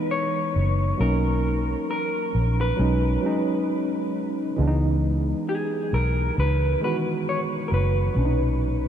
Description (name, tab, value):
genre	lo-fi hip hop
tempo	67 BPM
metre	4/4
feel	swing 58% on 16ths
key	unclear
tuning	A4 = 439 Hz
part	electric guitar through a small old amp	melody	0.0-8.9 s	G#4 to C#5	-28 LUFS	equal	low-pass filter, tape echo
part	tine electric piano	accompaniment	0.0-8.9 s	A#2 to F#4	-26 LUFS	right 1 dB	medium stereo tremolo, low-pass filter
part	vintage muted fingered electric bass	bass	0.6-8.9 s	F#1 to C#2	-22 LUFS	equal	none
room	moderate huge ambient reverb, RT60 7.1 s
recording	dreamy mix soaked in reverb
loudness	-21 LUFS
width	side -9 dB against mid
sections	0.0-4.6 A section; 4.6-8.9 B section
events	none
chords	0.0 C#m7; 1.0 Bmaj9; 2.8 B6; 4.6 C#m7; 8.2 Bmaj9